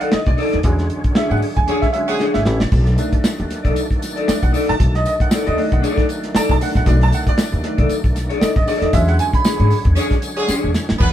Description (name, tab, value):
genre	funk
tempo	116 BPM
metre	4/4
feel	swing 56% on 16ths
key	unclear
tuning	A4 = 442 Hz
part	mellow electric guitar	accompaniment	0.0-10.7 s	D4 to D5	-21 LUFS	left 3 dB	none
part	overdriven tonewheel organ	sustained chords	0.0-11.1 s	D3 to G#4	-28 LUFS	equal	slow rotary speaker, chorus vibrato
part	bright upright piano	stabs	0.0-11.1 s	D3 to B5	-22 LUFS	right 2 dB	none
part	warm soul drum kit	drums	0.0-11.1 s	crash cymbal, hi-hat, kick drum, snare drum, splash cymbal	-18 LUFS	equal	none
part	upright bass	bass	0.1-11.1 s	G#1 to G#2	-18 LUFS	equal	none
part	warm horn section	second line	1.7-2.2, 10.0-11.1 s	D3 to B4	-23 LUFS	equal	none
part	tambourine	percussion	3.0-10.9 s	none	-33 LUFS	left 3 dB	none
room	moderate stone room reverb, RT60 1.0 s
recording	band playing live in one room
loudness	-15 LUFS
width	side -11 dB against mid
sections	0.0-11.0 A section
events	upright piano solo 0.0-11.0; band accent 0.6-2.7, 8.9-11.0; drum fill 2.2-2.7, 10.5-11.0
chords	0.0 B7#9; 0.6 E13; 2.7 B7#9; 8.9 E13